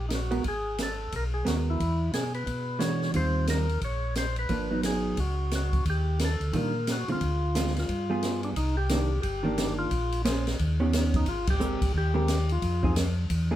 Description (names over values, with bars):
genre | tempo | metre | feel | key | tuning
soul jazz organ trio | 177 BPM | 4/4 | swing 62% on 8ths | C minor from 8.6 s | A4 = 440 Hz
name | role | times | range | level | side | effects
percussive tonewheel organ | melody | 0.0-12.9 s | D4 to Db5 | -32 LUFS | left 1 dB | overdrive, slow rotary speaker
mellow tonewheel organ | bass | 0.0-13.6 s | G1 to B2 | -28 LUFS | equal | slow rotary speaker
open jazz drum kit | drums | 0.1-13.4 s | hi-hat, kick drum, ride cymbal, snare drum | -32 LUFS | equal | none
vintage hollow-body jazz guitar | accompaniment | 0.3-13.6 s | D3 to C5 | -29 LUFS | right 3 dB | none
room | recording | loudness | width
moderate studio reverb, RT60 0.5 s | heard from further back in the room | -25 LUFS | side -12 dB against mid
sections
0.0-8.6 A section; 8.6-13.6 B section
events
band accent 11.4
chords
0.4 Abm9; 1.8 E9; 3.1 Eb69; 4.5 Abm7; 5.2 Dbsus4; 5.9 Ebmaj9; 7.2 Dm7b5; 7.9 G7b9; 8.6 Cm9; 9.9 Bbm9; 10.6 Ebaug7; 11.3 Abmaj9; 12.6 Fm7